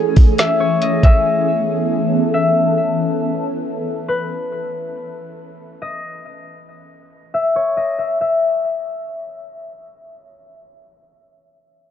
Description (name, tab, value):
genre	hip hop, atmospheric cloud-rap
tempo	free time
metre	none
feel	none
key	unclear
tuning	A4 = 442 Hz
part	concert harp	melody	0.0-9.9 s	B4 to E5	-19 LUFS	left 3 dB	low-pass filter, digital delay
part	shimmering ambient pad	sustained chords	0.0-3.0 s	E3 to A4	-20 LUFS	equal	chorus, built-in reverb, phaser, sidechain pumping
part	smooth R&B drum kit	drums	0.2-1.1 s	hi-hat, kick drum, snare drum	-10 LUFS	equal	none
room	light reverb, digital ambience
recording	dark, warm production, low-pass filter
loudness	-15 LUFS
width	side -10 dB against mid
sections	0.0-8.2 A section; 8.2-11.7 B section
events	filter sweep 0.0-8.2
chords	0.0 Amaj7; 1.3 B9sus4; 4.7 N.C.